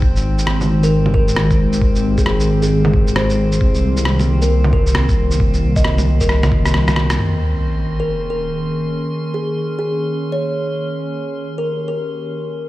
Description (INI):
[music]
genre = future garage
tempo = 134 BPM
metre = 4/4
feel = swing 62% on 16ths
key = Bb dorian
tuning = A4 = 440 Hz
[part]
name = warbly tape-like pad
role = sustained chords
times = 0.0-12.7 s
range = Eb3 to Db5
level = -22 LUFS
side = equal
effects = chorus, built-in reverb, sidechain pumping
[part]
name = dark detuned saw bass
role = bass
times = 0.0-7.2 s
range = Ab1 to C2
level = -16 LUFS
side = equal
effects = sidechain pumping
[part]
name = electronic kick drum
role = drums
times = 0.0-6.6 s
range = none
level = -17 LUFS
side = equal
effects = none
[part]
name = drifting glass-harmonics texture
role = texture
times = 0.0-12.7 s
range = C4 to C6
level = -31 LUFS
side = equal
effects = chorus, built-in reverb
[part]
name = electronic shaker, rim click and bongos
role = drums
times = 0.2-7.2 s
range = none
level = -22 LUFS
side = equal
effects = none
[part]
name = kalimba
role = melody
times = 0.8-12.1 s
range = Ab4 to Eb5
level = -23 LUFS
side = left 1 dB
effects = tape echo
[part]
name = sub drop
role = sound effects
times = 7.2-9.0 s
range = none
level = -22 LUFS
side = equal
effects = none
[sound]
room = digital ambience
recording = played on a big sound system in a bare room, stone room reverb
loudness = -14 LUFS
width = side -16 dB against mid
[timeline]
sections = 0.0-7.2 A section; 7.2-12.7 B section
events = drum fill 6.3-7.2; band accent 7.1; impact 7.2-9.0; filter sweep on ambient pad 7.2-12.7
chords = 0.0 Abmaj9; 3.6 Cm7; 7.2 Bbm11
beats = | 0.02 0.47 0.92 1.37 | 1.81 2.26 2.71 3.16 | 3.61 4.05 4.50 4.95 | 5.40 5.84 6.29 6.74 | 7.19 7.64 8.08 8.53 | 8.98 9.43 9.88 10.32 | 10.77 11.22 11.67 12.11 | 12.56